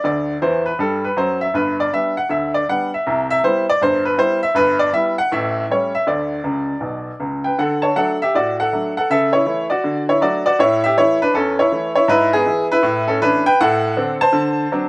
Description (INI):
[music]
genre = jazz, stride piano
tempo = 159 BPM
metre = 4/4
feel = swing 64% on 8ths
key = D major from 4.6 s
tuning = A4 = 441 Hz
[part]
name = bright upright piano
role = solo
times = 0.0-14.9 s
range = G1 to A5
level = -15 LUFS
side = equal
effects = none
[sound]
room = light reverb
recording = recorded outdoors, with no room sound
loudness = -15 LUFS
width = side -26 dB against mid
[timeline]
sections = 0.0-7.6 A section; 7.6-14.9 B section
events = upright piano fill 0.4-1.5, 6.4-7.6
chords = 0.0 D; 1.5 G; 3.0 Cmaj7; 4.6 Em/G; 5.3 A7; 6.1 Bmadd9; 7.6 D; 9.1 A/C#; 9.8 D; 10.6 A; 12.1 E/G#; 12.8 A; 13.6 D7/A; 14.3 D7